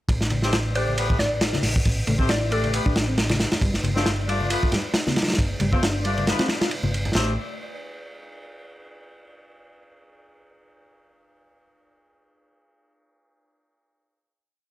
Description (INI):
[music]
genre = breakbeat, breaks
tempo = 136 BPM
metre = 4/4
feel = swing 55% on 16ths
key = A minor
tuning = A4 = 441 Hz
[part]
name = hollow-body short-scale picked electric bass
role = bass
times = 0.1-7.4 s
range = G1 to A1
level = -26 LUFS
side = equal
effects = none
[part]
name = crunchy breakbeat drum kit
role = drums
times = 0.1-7.3 s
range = hi-hat, kick drum, ride cymbal, snare drum, splash cymbal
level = -24 LUFS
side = equal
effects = none
[part]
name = congas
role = percussion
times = 0.3-7.1 s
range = none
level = -31 LUFS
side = left 2 dB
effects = none
[part]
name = mellow horn section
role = stabs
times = 0.4-7.3 s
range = A3 to D5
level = -29 LUFS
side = left 3 dB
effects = vintage 12-bit sampler grit, ping-pong delay
[part]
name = mallet-like synth pluck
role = melody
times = 0.8-3.0 s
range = A4 to D5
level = -29 LUFS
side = equal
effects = chorus, old record sound, cassette tape, ping-pong delay
[part]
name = reed electric piano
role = riff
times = 2.1-7.4 s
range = G3 to F4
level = -30 LUFS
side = equal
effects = tube saturation, vintage 12-bit sampler grit, ping-pong delay
[sound]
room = small room ambience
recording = none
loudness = -20 LUFS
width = side -15 dB against mid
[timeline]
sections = 0.1-7.2 groove; 7.2-8.9 final chord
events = none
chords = 0.1 Am7; 3.6 G9sus4; 7.2 Am